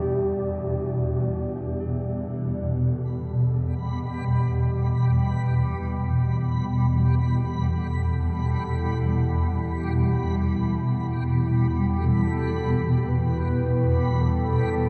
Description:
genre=dark ambient drone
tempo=free time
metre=none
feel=none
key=E minor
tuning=A4 = 440 Hz
part: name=mellow horn-like synth lead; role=melody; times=0.0-14.9 s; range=G4 to B4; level=-36 LUFS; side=equal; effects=lush chorus, delay
part: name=deep dark ambient pad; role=sustained chords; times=0.0-14.9 s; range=G3 to G5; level=-38 LUFS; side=equal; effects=chorus, built-in reverb
part: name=tubular bells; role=arpeggios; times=0.0-2.8 s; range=A4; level=-59 LUFS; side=equal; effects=none
part: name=swarming drone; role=drone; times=0.0-14.9 s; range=E2 to B2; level=-25 LUFS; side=equal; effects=built-in reverb
part: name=backwards swelling texture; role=texture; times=3.8-14.9 s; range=G3 to B5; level=-33 LUFS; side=equal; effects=built-in reverb
room=wet huge ambient reverb, RT60 7.9 s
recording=dark, warm production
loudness=-24 LUFS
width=mono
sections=0.0-2.8 A section; 2.8-14.9 B section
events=fade-in on ambient pad 2.8-14.9; fade-in on soft synth lead 2.8-14.9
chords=0.0 C6 (rootless); 2.8 Em

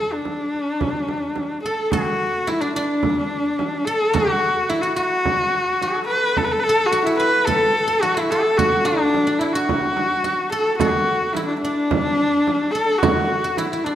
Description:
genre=mongolian traditional, Mongolian folk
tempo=108 BPM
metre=4/4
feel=straight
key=D gong mode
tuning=A4 = 440 Hz
part: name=bright horsehead fiddle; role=melody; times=0.0-13.9 s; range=D4 to B4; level=-19 LUFS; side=left 1 dB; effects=none
part: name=frame drum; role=percussion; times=0.3-13.9 s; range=none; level=-25 LUFS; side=right 4 dB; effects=none
part: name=guzheng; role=second line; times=1.7-13.9 s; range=D4 to B4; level=-24 LUFS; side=equal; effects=none
room=wet recital hall reverb, RT60 1.4 s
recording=none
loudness=-18 LUFS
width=side -11 dB against mid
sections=0.0-1.9 A section; 1.9-13.9 B section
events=none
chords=none

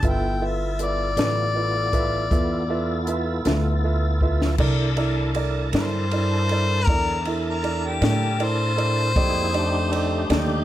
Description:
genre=slow blues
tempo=53 BPM (dotted quarters)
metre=12/8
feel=straight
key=C mixolydian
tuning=A4 = 436 Hz
part: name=warm upright piano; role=accompaniment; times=0.0-10.6 s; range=Eb4 to E5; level=-28 LUFS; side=right 4 dB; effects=none
part: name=tonewheel organ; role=sustained chords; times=0.0-10.6 s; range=A3 to A5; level=-30 LUFS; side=equal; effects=overdrive, chorus vibrato, slow rotary speaker
part: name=upright bass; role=bass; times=0.0-10.6 s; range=G1 to A2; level=-24 LUFS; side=equal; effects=none
part: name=compact cocktail drum kit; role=drums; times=0.0-10.5 s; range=crash cymbal, hi-hat, kick drum, ride cymbal, snare drum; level=-26 LUFS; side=equal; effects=none
part: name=warm harmonica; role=melody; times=0.1-10.6 s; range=G4 to G5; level=-26 LUFS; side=left 3 dB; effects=none
room=little or no reverb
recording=none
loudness=-20 LUFS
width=side -13 dB against mid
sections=0.0-4.6 A section; 4.6-10.6 B section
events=drum fill 4.2-4.6; harmonica solo 4.6-10.6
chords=0.0 G13; 4.6 C13; 9.2 F13

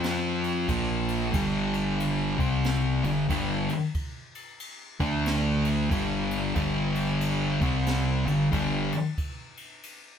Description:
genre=stoner and doom metal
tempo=92 BPM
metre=4/4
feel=swing 61% on 8ths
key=unclear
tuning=A4 = 440 Hz
part: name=thick fuzz guitar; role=riff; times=0.0-8.9 s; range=G2 to F4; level=-27 LUFS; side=left 5 dB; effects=distortion
part: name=thick fuzz guitar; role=riff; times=0.0-8.9 s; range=G2 to F4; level=-29 LUFS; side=right 9 dB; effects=distortion
part: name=growling fingered electric bass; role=bass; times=0.0-8.9 s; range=G1 to F2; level=-34 LUFS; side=right 1 dB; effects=overdrive
part: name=jazz brush drum kit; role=drums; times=0.0-10.0 s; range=kick drum, ride cymbal, snare drum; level=-34 LUFS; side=right 1 dB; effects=none
room=light reverb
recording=band playing live in one room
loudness=-24 LUFS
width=side -8 dB against mid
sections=0.0-10.2 A section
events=none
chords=0.0 F5; 0.7 Bb5; 1.3 G5; 2.3 C5; 3.0 G5; 4.9 D5; 5.9 G5; 7.5 C5; 8.2 G5

